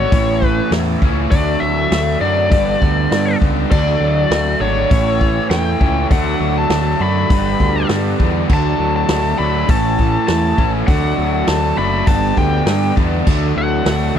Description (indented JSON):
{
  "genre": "classic rock",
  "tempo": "100 BPM",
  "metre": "4/4",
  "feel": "straight",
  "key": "unclear",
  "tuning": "A4 = 445 Hz",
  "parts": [
    { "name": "biting lead guitar", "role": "melody", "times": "0.0-14.1 s", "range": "C#5 to B5", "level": "-20 LUFS", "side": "left 3 dB", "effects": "overdrive" },
    { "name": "tonewheel organ", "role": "sustained chords", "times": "0.0-14.2 s", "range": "C#4 to D5", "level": "-32 LUFS", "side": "right 1 dB", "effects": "none" },
    { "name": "crunchy overdriven guitar", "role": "riff", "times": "0.0-14.2 s", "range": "G2 to F#4", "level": "-21 LUFS", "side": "right 17 dB", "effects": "none" },
    { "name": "raw garage guitar", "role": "riff", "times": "0.0-14.2 s", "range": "G2 to E4", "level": "-22 LUFS", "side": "left 15 dB", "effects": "overdrive, spring reverb" },
    { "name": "growling picked electric bass", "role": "bass", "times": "0.0-14.2 s", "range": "F#1 to G2", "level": "-19 LUFS", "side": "equal", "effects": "overdrive" },
    { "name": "vintage drum kit", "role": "drums", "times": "0.1-14.0 s", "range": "crash cymbal, hi-hat, kick drum, snare drum", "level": "-17 LUFS", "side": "equal", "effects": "none" }
  ],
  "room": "little or no reverb",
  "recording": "dry, close 1970s-style studio recording",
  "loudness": "-13 LUFS",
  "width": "side -9 dB against mid",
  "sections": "0.0-14.2 A section",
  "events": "none",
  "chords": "0.1 A; 1.3 D; 2.5 G; 3.7 D; 4.9 A; 6.1 D; 7.3 G; 8.5 D; 9.7 A; 10.9 D; 12.1 G; 13.3 D"
}